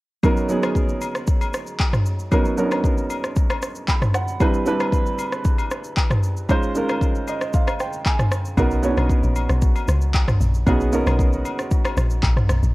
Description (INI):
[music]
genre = amapiano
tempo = 115 BPM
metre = 4/4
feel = straight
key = B major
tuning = A4 = 440 Hz
[part]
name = warm baby grand piano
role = accompaniment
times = 0.2-12.7 s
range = F#3 to B5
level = -23 LUFS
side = right 2 dB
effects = none
[part]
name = deep house drum kit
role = drums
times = 0.2-12.7 s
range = handclaps, kick drum, rim click, shaker, toms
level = -20 LUFS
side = equal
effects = none
[part]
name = agogo bells and woodblock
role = percussion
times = 0.2-12.4 s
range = none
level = -32 LUFS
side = left 5 dB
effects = none
[part]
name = deep log drum bass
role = bass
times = 8.6-12.7 s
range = A#1 to C#2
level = -20 LUFS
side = equal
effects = none
[sound]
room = little or no reverb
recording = worn, warbling old tape, cassette tape, warbly pitch drift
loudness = -18 LUFS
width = side -20 dB against mid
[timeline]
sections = 0.2-12.7 A section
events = grand piano fill 3.6-4.4, 7.0-8.6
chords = 0.2 Bmaj9; 4.4 Cmaj9; 6.5 C#maj9; 8.6 Bmaj9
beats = | 0.23 0.75 1.27 1.80 | 2.32 2.84 3.36 3.88 | 4.41 4.93 5.45 5.97 | 6.49 7.01 7.54 8.06 | 8.58 9.10 9.62 10.14 | 10.67 11.19 11.71 12.23